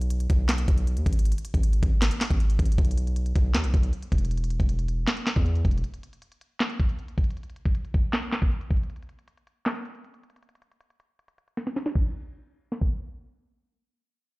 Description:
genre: hip hop, trap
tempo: 157 BPM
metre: 4/4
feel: half-time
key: B major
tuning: A4 = 440 Hz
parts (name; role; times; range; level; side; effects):
- long sustained 808-style bass; bass; 0.0-5.8 s; E1 to E2; -24 LUFS; equal; none
- trap drum kit; drums; 0.0-12.9 s; crash cymbal, handclaps, hi-hat, kick drum, snare drum; -24 LUFS; equal; none
room: little or no reverb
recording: played on a big sound system in a bare room, stone room reverb, low-pass filter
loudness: -23 LUFS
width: side -24 dB against mid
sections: 0.0-12.0 A section; 12.0-14.4 B section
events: break 5.8-6.6; drum fill 11.6-12.0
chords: none

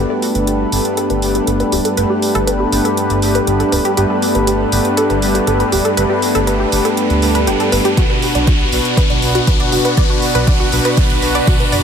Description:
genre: progressive house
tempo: 120 BPM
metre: 4/4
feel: straight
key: G major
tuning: A4 = 440 Hz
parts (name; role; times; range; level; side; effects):
- lush unison pad; sustained chords; 0.0-11.8 s; G3 to B4; -21 LUFS; right 1 dB; chorus, sidechain pumping
- wide unison pluck; arpeggios; 0.0-11.8 s; F#4 to D5; -21 LUFS; right 1 dB; sidechain pumping, tape echo
- soft supersaw; stabs; 0.0-11.8 s; G2 to B4; -17 LUFS; left 1 dB; sidechain pumping, low-pass filter, tape echo
- fat analog bass; bass; 0.0-11.8 s; D1 to D2; -20 LUFS; equal; sidechain pumping
- riser; sound effects; 2.7-11.8 s; none; -23 LUFS; equal; none
- electronic hi-hat; drums; 0.2-11.8 s; none; -23 LUFS; right 2 dB; overdrive
- electronic kick drum; drums; 8.0-11.6 s; none; -14 LUFS; equal; none
room: moderate lush hall reverb, RT60 2.3 s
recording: none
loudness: -12 LUFS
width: side -7 dB against mid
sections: 0.0-11.8 A section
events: build-up 0.0-11.8; filter sweep on synth pluck 0.0-11.8; filter sweep on supersaw synth 0.0-11.8; filter sweep on analog synth pad 0.0-11.8; riser 2.7-11.8; drum fill 8.0-11.8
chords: 0.0 Gadd9; 8.0 Bm

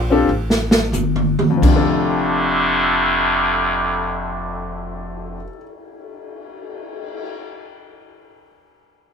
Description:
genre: jazz, big band swing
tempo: 84 BPM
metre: 4/4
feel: swing 69% on 8ths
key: F major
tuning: A4 = 441 Hz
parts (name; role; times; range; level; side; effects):
- muted trombone section; second line; 0.0-5.5 s; F2 to A3; -18 LUFS; right 1 dB; none
- upright bass; bass; 0.0-5.5 s; F1 to Bb1; -27 LUFS; equal; none
- clear grand piano; accompaniment; 0.1-5.6 s; F2 to A4; -21 LUFS; left 4 dB; none
- open jazz drum kit; drums; 0.5-7.2 s; crash cymbal, cymbal swell, hi-hat, kick drum, snare drum, toms; -19 LUFS; equal; none
room: wet small room reverb, RT60 0.5 s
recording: band playing live in one room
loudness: -15 LUFS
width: side -6 dB against mid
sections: 0.0-1.6 A section; 1.6-7.4 B section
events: slowing down 0.0-1.6; drum fill 0.3-1.6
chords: 0.0 Fadd9; 1.6 F69

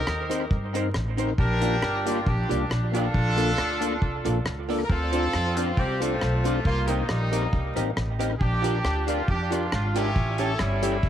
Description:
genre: ska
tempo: 137 BPM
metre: 4/4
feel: swing 53% on 8ths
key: Bb major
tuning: A4 = 440 Hz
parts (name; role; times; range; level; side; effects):
- warm horn section; melody; 0.0-11.1 s; G3 to Bb4; -28 LUFS; equal; tape echo
- tonewheel organ; stabs; 0.0-11.0 s; Bb3 to Bb4; -31 LUFS; left 9 dB; overdrive, chorus vibrato, slow rotary speaker
- upright bass; bass; 0.1-11.1 s; G1 to G2; -27 LUFS; equal; none
- deep reggae drum kit; drums; 0.1-11.1 s; hi-hat, kick drum, rim click; -29 LUFS; equal; tape echo
- archtop guitar, miked and amplified; accompaniment; 0.3-10.9 s; Eb4 to Eb5; -32 LUFS; right 10 dB; tape echo
room: light reverb, small room ambience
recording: 1960s-style stereo with parts hard left and right, vinyl crackle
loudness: -22 LUFS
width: side -10 dB against mid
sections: 0.0-4.9 A section; 4.9-11.1 A section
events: none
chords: 0.0 Cm7; 1.4 Bb6; 3.1 Bbmaj7; 4.9 Dm7; 6.6 Cm7; 8.4 Bb6; 10.2 A7

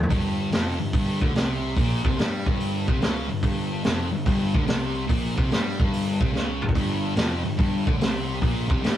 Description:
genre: blues rock power trio and southern rock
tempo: 144 BPM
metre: 4/4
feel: swing 68% on 8ths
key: G minor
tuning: A4 = 440 Hz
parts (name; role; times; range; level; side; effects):
- fuzz picked electric bass; bass; 0.0-9.0 s; F1 to G2; -30 LUFS; equal; overdrive
- vintage drum kit; drums; 0.0-9.0 s; hi-hat, kick drum, snare drum, toms; -24 LUFS; equal; none
- thick fuzz guitar; riff; 0.1-9.0 s; F2 to G3; -26 LUFS; left 1 dB; distortion
room: moderate studio reverb, RT60 0.6 s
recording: rough rehearsal-room recording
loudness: -22 LUFS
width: side -12 dB against mid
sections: 0.1-9.0 A section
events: drum fill 6.3-6.8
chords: 0.1 Gm

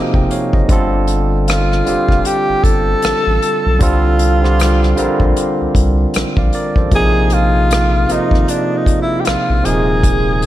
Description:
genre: R&B, neo-soul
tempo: 77 BPM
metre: 4/4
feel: swing 58% on 16ths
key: G phrygian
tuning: A4 = 440 Hz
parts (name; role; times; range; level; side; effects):
- barky tine electric piano; accompaniment; 0.0-10.5 s; C3 to G5; -17 LUFS; right 1 dB; none
- saturated sub bass; bass; 0.1-10.5 s; Eb1 to C2; -16 LUFS; equal; none
- unplugged drum kit; drums; 0.1-10.5 s; hi-hat, kick drum, rim click; -17 LUFS; equal; none
- breathy tenor saxophone; melody; 1.5-10.5 s; D4 to A4; -17 LUFS; equal; none
room: moderate lush hall reverb, RT60 1.9 s, small room reverb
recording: dreamy mix soaked in reverb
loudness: -12 LUFS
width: side -14 dB against mid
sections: 0.0-10.5 A section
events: none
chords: 0.0 Ebsus24; 0.7 G9sus4; 3.8 C9sus4; 6.9 Bb9sus4; 9.6 Ebsus24

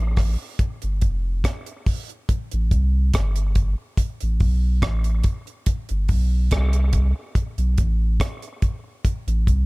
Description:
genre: dub reggae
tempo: 71 BPM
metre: 4/4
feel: straight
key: unclear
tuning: A4 = 440 Hz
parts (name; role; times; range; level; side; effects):
- warm sub bass; bass; 0.0-9.7 s; F1 to C2; -19 LUFS; equal; none
- deep reggae drum kit; drums; 0.2-9.7 s; hi-hat, kick drum, rim click; -22 LUFS; equal; none
room: little or no reverb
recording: none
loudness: -20 LUFS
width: side -25 dB against mid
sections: 0.0-2.3 A section; 2.3-9.7 A section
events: none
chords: none

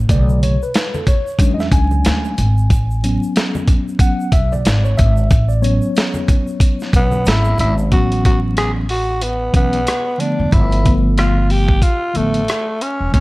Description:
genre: hip hop, jazz-hop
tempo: 92 BPM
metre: 4/4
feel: swing 59% on 16ths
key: A major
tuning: A4 = 441 Hz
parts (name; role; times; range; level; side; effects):
- upright bass; bass; 0.0-13.2 s; E1 to E2; -16 LUFS; equal; none
- mellow tine electric piano; accompaniment; 0.1-13.2 s; C#3 to G#5; -20 LUFS; equal; medium stereo tremolo
- dusty soul sampler-style drum kit; drums; 0.1-13.2 s; hi-hat, kick drum, rim click, snare drum; -16 LUFS; equal; none
- egg shaker and congas; percussion; 0.1-7.9 s; none; -28 LUFS; right 1 dB; none
- growling tenor saxophone; melody; 7.0-13.2 s; A3 to G#4; -20 LUFS; equal; none
room: small room ambience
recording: vinyl crackle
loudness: -13 LUFS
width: side -20 dB against mid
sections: 0.0-7.9 A section; 7.9-13.2 B section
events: tine electric piano solo 0.0-7.9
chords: 0.1 Bm9; 1.4 E13; 2.7 A69; 10.5 G9

